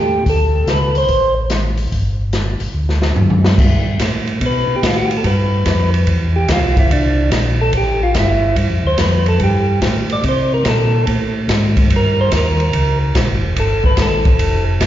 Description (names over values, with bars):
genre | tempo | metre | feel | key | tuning
soul jazz organ trio | 144 BPM | 4/4 | swing 67% on 8ths | G mixolydian | A4 = 444 Hz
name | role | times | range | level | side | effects
percussive tonewheel organ | melody | 0.0-1.3, 4.5-14.6 s | D4 to D5 | -18 LUFS | equal | slow rotary speaker, plate reverb, slapback echo
mellow tonewheel organ | bass | 0.0-14.9 s | E1 to C3 | -16 LUFS | equal | slow rotary speaker
open jazz drum kit | drums | 0.3-14.9 s | crash cymbal, hi-hat, kick drum, ride cymbal, snare drum, toms | -18 LUFS | equal | slapback echo
room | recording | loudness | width
light reverb | live gig heard through the venue's PA, recital hall reverb, nothing above 7.5 kHz | -13 LUFS | side -12 dB against mid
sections
0.0-3.6 A section; 3.6-14.9 B section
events
drum fill 2.7-3.6; tonewheel organ solo 3.6-14.9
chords
0.2 D5; 1.9 N.C.; 2.7 D; 3.6 G9; 6.9 C9; 8.6 Gsus2; 10.2 Abadd9; 11.9 C#dim7; 13.6 Gsus2